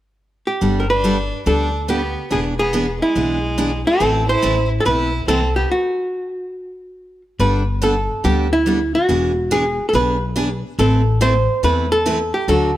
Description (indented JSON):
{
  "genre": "country, western swing",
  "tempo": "142 BPM",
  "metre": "4/4",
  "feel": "swing 65% on 8ths",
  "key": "G major",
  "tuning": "A4 = 436 Hz",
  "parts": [
    { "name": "archtop guitar, miked and amplified", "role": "melody", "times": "0.5-12.8 s", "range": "E4 to C5", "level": "-19 LUFS", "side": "right 1 dB", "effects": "none" },
    { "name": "picked steel-string acoustic guitar", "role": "accompaniment", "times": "0.6-12.7 s", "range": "D3 to B4", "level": "-22 LUFS", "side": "right 1 dB", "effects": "none" },
    { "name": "upright bass", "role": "bass", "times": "0.6-12.8 s", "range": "E1 to E2", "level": "-21 LUFS", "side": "left 1 dB", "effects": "none" },
    { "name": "clear fiddle", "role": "second line", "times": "0.8-5.7 s", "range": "G#3 to E4", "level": "-26 LUFS", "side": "equal", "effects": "none" }
  ],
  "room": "moderate echo chamber reverb, RT60 1.6 s",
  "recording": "none",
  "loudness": "-16 LUFS",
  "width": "side -14 dB against mid",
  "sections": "0.6-7.4 A section; 7.4-12.8 B section",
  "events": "stop 5.7-7.4",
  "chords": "0.0 N.C.; 0.6 Gadd9; 2.3 E7; 4.0 Amadd9; 5.7 N.C.; 7.4 Gadd9; 9.1 E7; 10.8 Amadd9"
}